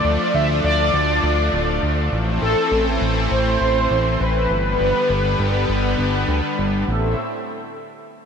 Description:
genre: synthwave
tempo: 101 BPM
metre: 4/4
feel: straight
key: A minor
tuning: A4 = 443 Hz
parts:
  - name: mellow synth brass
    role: melody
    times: 0.0-7.2 s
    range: A4 to E5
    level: -21 LUFS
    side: equal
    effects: chorus, ping-pong delay
  - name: lush unison pad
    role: sustained chords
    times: 0.0-7.2 s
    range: A2 to E5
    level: -22 LUFS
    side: equal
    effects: chorus
  - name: fat analog bass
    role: bass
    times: 0.0-7.2 s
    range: D1 to D2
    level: -21 LUFS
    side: equal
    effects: none
room: moderate lush hall reverb, RT60 2.8 s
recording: bright 1980s-style digital production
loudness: -17 LUFS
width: side -6 dB against mid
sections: 0.0-6.9 A section; 6.9-8.3 B section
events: none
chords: 0.0 Dm; 2.1 Am; 4.5 G; 6.9 Am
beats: 0.34 0.94 1.53 | 2.12 2.72 3.31 3.91 | 4.50 5.09 5.69 6.28 | 6.88

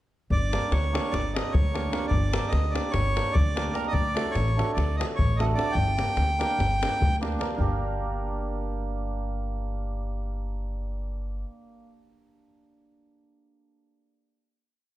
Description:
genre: balkan folk, Balkan wedding band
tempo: 297 BPM (eighths)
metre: 9/8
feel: straight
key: G hungarian minor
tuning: A4 = 440 Hz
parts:
  - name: accordion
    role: melody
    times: 0.3-7.2 s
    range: Bb4 to G5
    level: -30 LUFS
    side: right 1 dB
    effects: none
  - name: upright bass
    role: bass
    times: 0.3-11.4 s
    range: G1 to D2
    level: -28 LUFS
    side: equal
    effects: none
  - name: davul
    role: percussion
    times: 0.3-7.8 s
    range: none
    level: -29 LUFS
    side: left 2 dB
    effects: none
  - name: hammered dulcimer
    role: accompaniment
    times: 0.5-11.8 s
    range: A3 to Bb4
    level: -32 LUFS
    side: right 3 dB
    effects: none
room: light reverb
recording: dark, warm production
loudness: -24 LUFS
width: side -15 dB against mid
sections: 0.3-7.6 A section; 7.6-11.2 final chord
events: none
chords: 0.3 Gm; 3.9 D; 5.8 Gm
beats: | 0.31 0.51 0.71 0.91 1.11 1.31 1.51 1.71 1.91 | 2.11 2.32 2.52 2.72 2.92 3.12 3.32 3.53 3.73 | 3.93 4.13 4.33 4.54 4.74 4.94 5.15 5.35 5.55 | 5.75 5.96 6.16 6.36 6.57 6.77 6.97 7.17 7.38 | 7.58 7.78 7.99 8.19 8.39 8.59 8.79 9.00 9.20 | 9.40 9.60 9.80 10.00 10.20 10.40 10.61 10.81 11.01

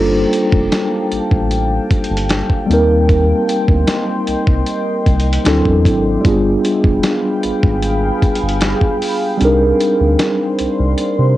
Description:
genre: contemporary R&B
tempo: 76 BPM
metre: 4/4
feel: straight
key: G minor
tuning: A4 = 440 Hz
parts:
  - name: mellow tine electric piano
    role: accompaniment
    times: 0.0-11.4 s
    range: F#3 to C5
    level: -16 LUFS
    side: equal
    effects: medium stereo tremolo, cassette tape
  - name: deep dark ambient pad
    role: sustained chords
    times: 0.0-11.4 s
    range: Ab4 to C6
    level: -22 LUFS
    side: equal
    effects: chorus, built-in reverb, sidechain pumping, cassette tape
  - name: round analog bass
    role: bass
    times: 0.0-11.3 s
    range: F1 to C3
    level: -17 LUFS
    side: equal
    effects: none
  - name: dusty soul sampler-style drum kit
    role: drums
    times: 0.3-11.2 s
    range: hi-hat, kick drum, snare drum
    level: -17 LUFS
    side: equal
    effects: none
room: light reverb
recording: home recording on cassette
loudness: -12 LUFS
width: side -15 dB against mid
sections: 0.0-11.4 A section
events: kick muted 9.4-11.4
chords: 0.0 Gm9; 2.7 Eb6; 5.5 D9; 6.2 G7b9; 9.4 Cm9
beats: 0.72 1.51 2.30 | 3.09 3.88 4.67 5.46 | 6.25 7.04 7.83 8.62 | 9.41 10.20 10.99

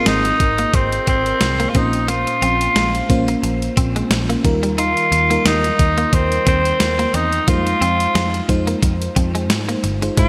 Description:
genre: 1980s-style pop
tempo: 89 BPM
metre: 4/4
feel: swing 55% on 16ths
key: F minor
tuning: A4 = 441 Hz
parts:
  - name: breathy tenor saxophone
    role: melody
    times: 0.0-10.3 s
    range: C4 to F4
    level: -21 LUFS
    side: equal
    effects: delay
  - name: FM electric piano with soft pad layer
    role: accompaniment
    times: 0.0-10.3 s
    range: Ab2 to Eb5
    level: -25 LUFS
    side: equal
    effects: chorus
  - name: clean electric guitar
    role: riff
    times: 0.0-10.3 s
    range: G3 to Eb4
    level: -28 LUFS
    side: equal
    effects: analog chorus
  - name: vintage muted picked electric bass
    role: bass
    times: 0.1-10.3 s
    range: G1 to Ab2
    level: -25 LUFS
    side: equal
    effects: none
  - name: clean 12-bit digital drum machine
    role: drums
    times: 0.1-10.3 s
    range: hi-hat, kick drum, snare drum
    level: -22 LUFS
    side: equal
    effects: gated reverb
room: moderate lush hall reverb, RT60 2.3 s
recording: bright 1980s-style digital production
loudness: -17 LUFS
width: mono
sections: 0.0-10.3 A section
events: none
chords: 0.0 Ab6; 1.7 Bbmadd9; 4.4 Ebadd9; 7.5 Fm7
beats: 0.06 0.74 1.41 | 2.08 2.76 3.43 4.11 | 4.78 5.46 6.13 6.80 | 7.48 8.15 8.83 9.50 | 10.17

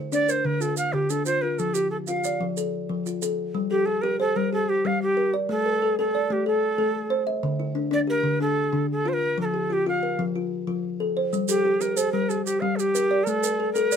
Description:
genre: southern african traditional, mbira-style interlocking cycle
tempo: 123 BPM (dotted quarters)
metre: 12/8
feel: straight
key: G equiheptatonic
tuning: A4 = 440 Hz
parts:
  - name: kalimba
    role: arpeggios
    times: 0.0-14.0 s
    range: D3 to E5-43c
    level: -25 LUFS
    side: left 2 dB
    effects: none
  - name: bright Native American-style cedar flute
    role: melody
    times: 0.1-14.0 s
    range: G4 to F5+33c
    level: -24 LUFS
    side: right 1 dB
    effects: none
  - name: maracas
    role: percussion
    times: 0.1-3.4, 11.3-14.0 s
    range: none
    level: -32 LUFS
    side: right 9 dB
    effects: none
room: light reverb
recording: minimal, uncompressed stereo recording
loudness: -22 LUFS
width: side -7 dB against mid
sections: 0.0-3.5 A section; 3.5-14.0 B section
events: none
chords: 0.0 Dm; 1.6 F; 3.5 Gm; 5.5 Am; 7.4 Dm; 9.4 F; 11.3 Gm; 13.3 N.C.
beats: 0.12 0.61 1.10 | 1.59 2.08 2.57 3.06 | 3.54 4.03 4.52 5.01 | 5.49 5.98 6.46 6.95 | 7.44 7.92 8.41 8.89 | 9.38 9.87 10.35 10.84 | 11.32 11.81 12.30 12.78 | 13.27 13.76

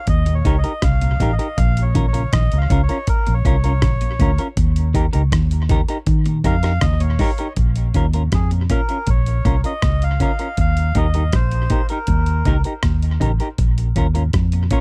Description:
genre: roots reggae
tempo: 80 BPM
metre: 4/4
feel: straight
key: Bb dorian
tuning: A4 = 439 Hz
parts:
  - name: melodica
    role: melody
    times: 0.0-14.8 s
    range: Ab4 to F5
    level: -30 LUFS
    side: equal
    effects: tape echo
  - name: vintage muted fingered electric bass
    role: bass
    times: 0.1-14.7 s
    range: A1 to Eb3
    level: -20 LUFS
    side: equal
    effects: none
  - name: dusty soul sampler-style drum kit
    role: drums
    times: 0.1-14.8 s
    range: hi-hat, kick drum, rim click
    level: -22 LUFS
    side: equal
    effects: none
  - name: clean electric guitar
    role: arpeggios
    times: 0.3-14.8 s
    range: G2 to Eb3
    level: -29 LUFS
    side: equal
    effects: none
  - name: semi-hollow electric guitar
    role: accompaniment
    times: 0.5-14.8 s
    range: Db4 to Bb4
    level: -29 LUFS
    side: equal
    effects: tape echo
room: little or no reverb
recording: dark, warm production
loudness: -18 LUFS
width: mono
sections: 0.0-7.6 A section; 7.6-14.8 B section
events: melodica solo 0.0-7.6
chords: 0.0 Eb; 1.6 Bbm; 4.6 Eb; 7.6 Bbm; 10.6 Eb; 13.6 Bbm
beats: 0.08 0.83 | 1.58 2.33 3.08 3.83 | 4.58 5.33 6.08 6.83 | 7.58 8.33 9.08 9.83 | 10.58 11.33 12.08 12.83 | 13.58 14.33

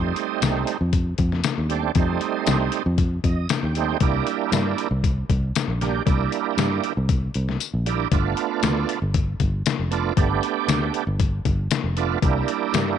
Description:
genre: straight-eighth soul blues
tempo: 117 BPM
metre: 4/4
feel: straight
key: unclear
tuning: A4 = 440 Hz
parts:
  - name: bright tonewheel organ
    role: accompaniment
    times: 0.0-13.0 s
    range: G3 to G5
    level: -24 LUFS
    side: right 13 dB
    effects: overdrive, chorus vibrato, slow rotary speaker
  - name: fingered electric bass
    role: bass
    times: 0.0-13.0 s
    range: F1 to G2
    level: -23 LUFS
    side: equal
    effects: none
  - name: trip hop sampler-style drum kit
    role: drums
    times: 0.2-12.9 s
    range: hi-hat, kick drum, snare drum, tambourine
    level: -24 LUFS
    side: left 4 dB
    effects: none
room: light reverb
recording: 1960s-style stereo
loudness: -20 LUFS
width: side -9 dB against mid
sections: 0.0-13.0 A section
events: tonewheel organ fill 3.0-4.0; kick and snare drop out 7.6-8.1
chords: 0.0 F9; 4.0 C9; 8.1 G9; 12.2 C9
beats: 0.42 0.93 1.44 | 1.96 2.47 2.98 3.49 | 4.01 4.52 5.03 5.55 | 6.06 6.57 7.09 7.60 | 8.11 8.63 9.14 9.65 | 10.17 10.68 11.20 11.71 | 12.22 12.74

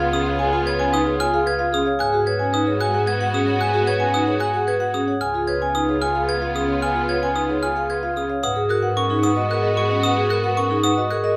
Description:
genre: classical, minimalist pattern music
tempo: 112 BPM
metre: 3/4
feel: straight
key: G# dorian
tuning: A4 = 440 Hz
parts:
  - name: vibraphone with medium hard mallets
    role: melody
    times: 0.0-11.4 s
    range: G#4 to G#5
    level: -25 LUFS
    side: equal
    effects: none
  - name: rich symphonic violin section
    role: sustained chords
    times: 0.0-11.4 s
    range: B3 to F#4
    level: -31 LUFS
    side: equal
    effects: none
  - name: glockenspiel with brass mallets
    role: arpeggios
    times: 0.0-11.3 s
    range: C#6 to G#6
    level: -28 LUFS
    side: equal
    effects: none
  - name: vibraphone with medium mallets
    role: arpeggios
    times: 0.0-11.4 s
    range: C#4 to C#5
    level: -27 LUFS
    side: equal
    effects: none
  - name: warm double bass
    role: bass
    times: 0.0-11.4 s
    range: C#2 to G#2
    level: -30 LUFS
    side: equal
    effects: none
room: light reverb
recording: none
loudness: -21 LUFS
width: mono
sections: 0.0-8.4 A section; 8.4-11.4 B section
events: none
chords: 0.0 C#7; 2.0 G#m7; 5.2 C#7; 8.4 G#m9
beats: | 0.40 0.93 1.47 | 2.00 2.54 3.08 | 3.61 4.15 4.68 | 5.22 5.75 6.29 | 6.83 7.36 7.90 | 8.43 8.97 9.50 | 10.04 10.57 11.11

